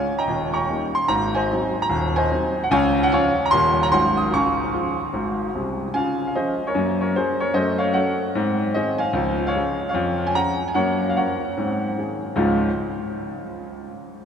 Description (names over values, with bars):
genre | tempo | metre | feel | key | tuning
jazz, stride piano | 149 BPM | 4/4 | swing 62% on 8ths | Db major | A4 = 444 Hz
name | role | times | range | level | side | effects
clear concert grand piano | solo | 0.0-12.7 s | Eb1 to Eb6 | -19 LUFS | equal | none
room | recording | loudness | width
wet cathedral reverb, RT60 5.8 s | recorded in a church or concert hall | -19 LUFS | side -7 dB against mid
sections
0.0-5.9 A section; 5.9-12.4 B section; 12.4-14.0 C section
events
none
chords
0.3 Eb7; 1.1 Ab7; 1.9 Ab7/Eb; 2.7 Db; 3.5 Eb7; 3.9 Ab13; 4.3 Db; 6.7 Gb; 7.5 Gbm; 8.3 Ab7; 9.2 Db; 10.0 Db/F; 10.8 Gbmaj7; 11.6 Ab7; 12.4 Db